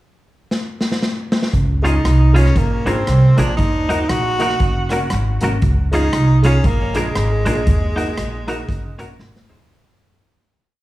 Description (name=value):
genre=ska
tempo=117 BPM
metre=4/4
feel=swing 59% on 8ths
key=Db major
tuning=A4 = 440 Hz
part: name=street-band drum kit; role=drums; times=0.5-9.7 s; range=hi-hat, kick drum, rim click, snare drum, toms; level=-21 LUFS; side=equal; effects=none
part: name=upright bass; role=bass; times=1.5-9.7 s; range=Gb1 to Eb2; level=-16 LUFS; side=right 1 dB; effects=none
part: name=clear tenor saxophone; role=melody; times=1.8-9.2 s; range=Ab3 to Gb4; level=-22 LUFS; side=equal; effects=tape echo
part: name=semi-hollow electric guitar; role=accompaniment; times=1.8-9.6 s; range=Db4 to C5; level=-26 LUFS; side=right 2 dB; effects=none
part: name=warm upright piano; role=stabs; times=1.8-9.6 s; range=Ab3 to C5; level=-25 LUFS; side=left 2 dB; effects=none
room=light reverb, small room ambience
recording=studio reverb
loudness=-14 LUFS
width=side -16 dB against mid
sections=0.0-1.5 pickup bar; 1.5-9.7 head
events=drum fill 0.5-1.5, 9.2-9.7; fade-out 7.7-9.7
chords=0.0 N.C.; 1.5 Db; 2.6 Bb7; 3.6 Ebm; 4.6 Gb; 5.6 Db; 6.7 Bb7; 7.7 Ebm; 8.7 Gb; 9.2 Ab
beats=0.00 0.52 1.03 | 1.54 2.05 2.56 3.08 | 3.59 4.10 4.61 5.12 | 5.63 6.14 6.65 7.16 | 7.67 8.18 8.69 9.20